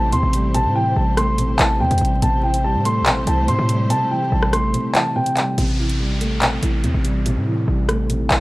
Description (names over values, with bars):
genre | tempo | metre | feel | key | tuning
hip hop, drill | 143 BPM | 4/4 | half-time | A minor | A4 = 440 Hz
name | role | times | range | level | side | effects
dark grand piano | melody | 0.0-5.6 s | G5 to C6 | -22 LUFS | equal | low-pass filter, analog delay
felt-muted upright piano | accompaniment | 0.0-8.4 s | C3 to A3 | -22 LUFS | right 1 dB | low-pass filter
dark symphonic string section | sustained chords | 0.0-5.5 s | A3 to C5 | -30 LUFS | left 1 dB | none
hard-hitting 808-style bass | bass | 0.0-8.4 s | A1 to C3 | -20 LUFS | equal | none
drill drum kit | drums | 0.1-8.4 s | handclaps, hi-hat, rim click | -20 LUFS | equal | none
downlifter | sound effects | 5.6-8.4 s | none | -31 LUFS | equal | none
room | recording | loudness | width
small room ambience | dry, gritty hardware recording, vinyl crackle | -16 LUFS | side -20 dB against mid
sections
0.0-5.6 A section; 5.6-8.4 B section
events
kick muted 4.7-5.6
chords
0.0 Am7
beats
0.12 | 0.54 0.96 1.38 1.80 | 2.22 2.64 3.06 3.48 | 3.90 4.32 4.74 5.16 | 5.58 6.00 6.42 6.84 | 7.26 7.68 8.10